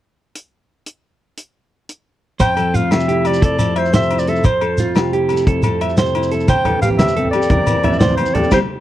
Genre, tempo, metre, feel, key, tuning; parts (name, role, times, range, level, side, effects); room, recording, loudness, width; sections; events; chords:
highlife guitar band; 118 BPM (dotted quarters); 12/8; straight; F major; A4 = 440 Hz
warm soul drum kit; drums; 0.4-8.6 s; hi-hat, kick drum, snare drum; -17 LUFS; equal
breathy clarinet; melody; 2.4-8.6 s; C5 to G5; -19 LUFS; equal
fingerpicked steel-string acoustic guitar; accompaniment; 2.4-8.6 s; F2 to A4; -20 LUFS; left 3 dB
clean electric guitar; arpeggios; 2.4-8.6 s; F4 to E5; -20 LUFS; right 5 dB; spring reverb
agogo bells; percussion; 2.4-8.6 s; -27 LUFS; left 12 dB
shekere; percussion; 2.4-8.6 s; -22 LUFS; right 1 dB
congas; percussion; 6.5-8.6 s; -20 LUFS; right 1 dB
small room ambience; dry, close 1970s-style studio recording; -13 LUFS; side -13 dB against mid
0.4-2.4 A section; 2.4-8.8 B section
band accent 8.5
0.4 N.C.; 2.4 Fmaj7; 6.5 C7/F